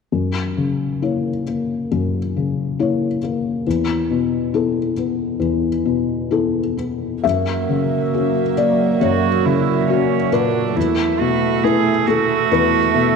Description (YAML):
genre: neoclassical piano and strings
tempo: 68 BPM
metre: 4/4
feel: rubato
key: unclear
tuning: A4 = 440 Hz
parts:
  - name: felt-muted upright piano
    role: accompaniment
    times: 0.1-13.2 s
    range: E2 to E5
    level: -18 LUFS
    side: left 5 dB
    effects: none
  - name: warm viola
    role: accompaniment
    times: 7.2-13.2 s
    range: A3 to A#3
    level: -23 LUFS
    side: right 15 dB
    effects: none
  - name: phased analog pad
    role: sustained chords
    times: 7.2-13.2 s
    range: F#3 to E5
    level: -23 LUFS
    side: right 4 dB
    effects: phaser, chorus
  - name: rich cello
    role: second line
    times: 9.0-13.2 s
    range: C#4 to G#4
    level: -20 LUFS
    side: right 11 dB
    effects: none
room: wet plate reverb, RT60 2.4 s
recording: 1960s-style stereo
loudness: -16 LUFS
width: side -5 dB against mid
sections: 0.1-7.2 A section; 7.2-13.2 B section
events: none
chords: 0.1 F#7; 3.7 Esus4; 7.2 F#7; 10.8 Esus4